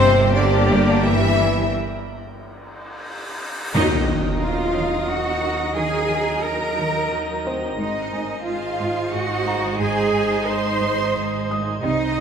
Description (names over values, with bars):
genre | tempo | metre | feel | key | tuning
cinematic, suspense film score | 89 BPM | 3/4 | straight | Eb dorian | A4 = 440 Hz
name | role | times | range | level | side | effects
rich studio violin section | melody | 0.0-12.2 s | Bb4 to Fb5 | -32 LUFS | left 2 dB | none
rich studio violin section | second line | 0.0-12.2 s | C5 to C6 | -27 LUFS | left 2 dB | none
rich studio viola section | accompaniment | 0.0-12.2 s | Gb3 to G4 | -26 LUFS | right 1 dB | none
clear French horn section | sustained chords | 0.0-12.1 s | Gb3 to C5 | -25 LUFS | left 4 dB | none
drifting glass-harmonics texture | sustained chords | 0.3-12.2 s | Bb4 to Bb5 | -30 LUFS | right 1 dB | chorus, built-in reverb
warm studio cello section | riff | 0.0-12.2 s | G2 to Eb4 | -29 LUFS | right 2 dB | none
rich studio cello section | bass | 0.0-12.2 s | C3 to C5 | -24 LUFS | right 2 dB | none
rich studio double bass section | bass | 0.0-12.2 s | G1 to Eb2 | -26 LUFS | right 3 dB | none
felt-muted upright piano | texture | 0.0-12.2 s | C4 to Eb6 | -34 LUFS | left 1 dB | none
cymbal swell and sub drop | sound effects | 2.8-5.8 s | none | -28 LUFS | equal | none
tam-tam | percussion | 3.7-6.4 s | none | -33 LUFS | left 2 dB | none
timpani | percussion | 3.7-4.7 s | Eb3 | -28 LUFS | left 3 dB | none
room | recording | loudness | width
wet scoring stage reverb, RT60 2.1 s | minimal, uncompressed stereo recording | -18 LUFS | side -7 dB against mid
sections
0.0-3.7 A section; 3.7-12.2 B section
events
break 1.7-3.7; cymbal swell 2.8-3.7; band accent 3.7-4.4; impact 3.7-5.8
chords
0.0 Gm; 3.7 Ebmadd9; 7.8 Ab